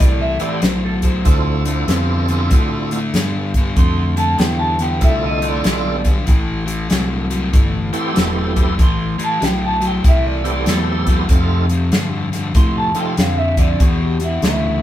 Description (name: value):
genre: electric blues shuffle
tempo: 96 BPM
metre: 4/4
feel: swing 64% on 8ths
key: A minor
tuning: A4 = 439 Hz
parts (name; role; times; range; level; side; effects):
- electric guitar through a small old amp; second line; 0.0-14.8 s; E4 to C6; -22 LUFS; right 2 dB; none
- crunchy overdriven guitar; riff; 0.0-14.8 s; E2 to B3; -22 LUFS; left 3 dB; spring reverb
- fingered electric bass; bass; 0.0-14.8 s; E1 to A2; -20 LUFS; equal; none
- natural country drum kit; drums; 0.0-14.6 s; hi-hat, kick drum, snare drum; -16 LUFS; equal; none
- tonewheel organ; accompaniment; 0.4-13.2 s; A3 to A4; -24 LUFS; right 4 dB; slow rotary speaker, overdrive, chorus vibrato
room: moderate studio reverb, RT60 0.7 s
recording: band playing live in one room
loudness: -14 LUFS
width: side -12 dB against mid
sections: 0.0-14.8 A section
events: clean electric guitar solo 0.0-14.8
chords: 0.0 Am9; 1.3 Dm9; 6.3 Am9; 11.3 F7; 13.8 E7(no3)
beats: 0.01 0.64 | 1.26 1.89 2.52 3.15 | 3.77 4.40 5.03 5.66 | 6.28 6.91 7.54 8.16 | 8.79 9.42 10.04 10.67 | 11.30 11.92 12.55 13.18 | 13.80 14.43